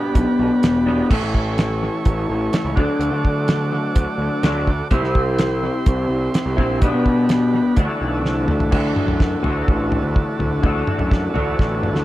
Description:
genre	psychedelic rock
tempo	126 BPM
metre	4/4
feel	straight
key	D mixolydian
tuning	A4 = 436 Hz
part	overdriven combo organ	sustained chords	0.0-12.0 s	F#4 to D6	-28 LUFS	right 5 dB	none
part	electric guitar through a small old amp	riff	0.0-12.0 s	A2 to F#4	-20 LUFS	left 1 dB	rotary speaker
part	fuzz picked electric bass	bass	0.1-12.0 s	E1 to D3	-23 LUFS	equal	overdrive
part	damped 70s drum kit	drums	0.2-12.0 s	crash cymbal, hi-hat, kick drum, snare drum, toms	-20 LUFS	equal	analog delay
room	small room ambience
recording	echo-heavy mix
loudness	-16 LUFS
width	side -15 dB against mid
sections	0.0-8.7 A section; 8.7-12.0 B section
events	drum fill 8.2-8.7, 11.6-12.0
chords	0.0 G/B; 1.1 A; 2.8 D; 4.9 C; 6.8 G/B; 7.8 Dadd9

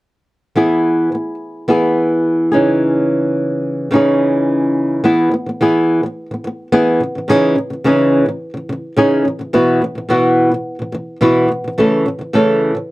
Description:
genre	pop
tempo	107 BPM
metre	4/4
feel	straight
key	E major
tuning	A4 = 440 Hz
part	flamenco guitar	solo	0.6-12.9 s	B2 to A4	-13 LUFS	equal	none
room	light reverb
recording	dry, close 1970s-style studio recording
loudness	-13 LUFS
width	side -19 dB against mid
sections	0.6-5.0 A section; 5.0-12.9 B section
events	none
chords	0.6 E; 2.5 C#madd9; 5.0 E; 7.0 C#madd9; 9.5 Bsus4; 11.8 A/C#

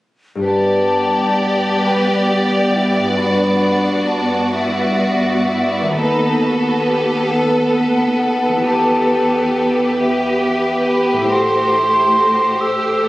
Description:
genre	classical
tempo	40-47 BPM (dotted quarters)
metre	6/8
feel	rubato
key	G major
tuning	A4 = 440 Hz
part	concert flute	second line	0.4-13.1 s	E5 to E6	-20 LUFS	equal	none
part	concert harp	arpeggios	0.4-13.1 s	G2 to B4	-23 LUFS	left 1 dB	none
part	rich studio violin section	melody	0.5-13.1 s	B4 to D5	-22 LUFS	left 1 dB	none
part	rich studio violin section	second line	0.5-13.1 s	F#4 to A4	-22 LUFS	left 1 dB	none
part	warm studio viola section	accompaniment	0.5-13.1 s	A3 to B3	-20 LUFS	right 1 dB	none
part	warm studio double bass section	bass	0.5-13.1 s	A1 to G2	-24 LUFS	equal	none
part	clear studio cello section	bass	1.8-13.1 s	D4 to B4	-23 LUFS	equal	none
room	moderate scoring stage reverb, RT60 1.6 s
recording	recorded on a phone in the room, studio reverb, compression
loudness	-14 LUFS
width	side -18 dB against mid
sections	0.5-13.1 A section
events	none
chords	0.5 G; 3.2 D69/G; 6.0 B7/D#; 8.7 Em; 11.3 Am7

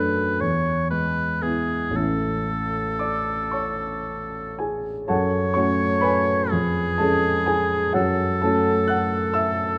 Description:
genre	classical, romantic duo for oboe and grand piano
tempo	37-44 BPM (dotted quarters)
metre	6/8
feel	rubato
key	A major, F# minor from 5.1 s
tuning	A4 = 441 Hz
part	clear oboe	melody	0.0-9.8 s	G#4 to C#5	-27 LUFS	equal	none
part	warm grand piano	accompaniment	0.0-9.8 s	A1 to F#6	-25 LUFS	equal	none
room	moderate recital hall reverb, RT60 1.7 s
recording	dark, warm production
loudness	-23 LUFS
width	mono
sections	0.0-5.1 A section; 5.1-9.8 B section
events	none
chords	0.4 E; 2.0 A; 5.1 F#m; 6.5 C#7/E#; 7.9 F#m

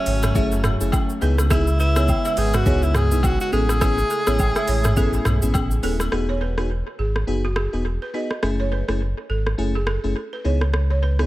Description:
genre	afrobeats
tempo	104 BPM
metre	4/4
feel	swing 58% on 16ths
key	unclear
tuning	A4 = 440 Hz
part	breathy tenor saxophone	melody	0.0-5.8 s	C#4 to G#4	-25 LUFS	equal	tape echo
part	lush unison pad	sustained chords	0.0-6.1 s	C#3 to E4	-31 LUFS	equal	chorus
part	balafon	riff	0.1-11.1 s	F#4 to E5	-29 LUFS	right 4 dB	tape echo
part	sub bass with octave	bass	0.1-11.3 s	D#1 to C#2	-21 LUFS	equal	none
part	afro-pop drum kit	drums	0.1-11.3 s	hi-hat, kick drum, rim click, shaker, toms	-24 LUFS	equal	overdrive, tape echo
part	agogo bells and woodblock	percussion	0.2-6.1 s	none	-32 LUFS	left 3 dB	tape echo
part	crystalline FM electric piano	accompaniment	0.3-11.3 s	A3 to G#4	-27 LUFS	left 2 dB	chorus
room	little or no reverb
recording	echo-heavy mix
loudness	-18 LUFS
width	side -16 dB against mid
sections	0.0-6.1 A section; 6.1-11.3 B section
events	none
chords	0.0 F#m7; 1.2 C#m7; 3.5 Amaj7; 6.1 Emaj7; 8.4 F#m7; 10.4 C#m7

